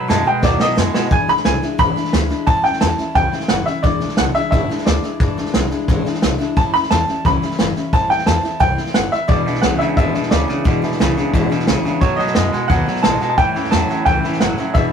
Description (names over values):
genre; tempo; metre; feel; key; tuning
rockabilly; 176 BPM; 4/4; straight; E mixolydian; A4 = 440 Hz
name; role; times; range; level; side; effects
bright upright piano; melody; 0.0-14.9 s; C#5 to B5; -19 LUFS; right 1 dB; none
picked steel-string acoustic guitar; accompaniment; 0.0-14.9 s; E2 to F#4; -23 LUFS; left 4 dB; none
twangy electric guitar; riff; 0.0-1.1, 9.3-14.9 s; E2 to G#3; -21 LUFS; right 2 dB; none
upright bass; bass; 0.0-14.9 s; E1 to F#2; -24 LUFS; equal; none
vintage drum kit; drums; 0.1-14.8 s; hi-hat, kick drum, snare drum; -18 LUFS; right 1 dB; none
room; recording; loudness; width
moderate studio reverb, RT60 0.6 s; rough rehearsal-room recording, tube saturation; -14 LUFS; side -7 dB against mid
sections
0.0-1.1 A section; 1.1-14.9 B section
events
drum fill 0.0-1.1; upright piano solo 0.0-1.1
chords
0.0 B7; 1.1 E7; 2.5 A7; 3.8 E7; 6.6 A7; 7.9 Am7; 9.3 E7; 12.0 B7; 13.4 A7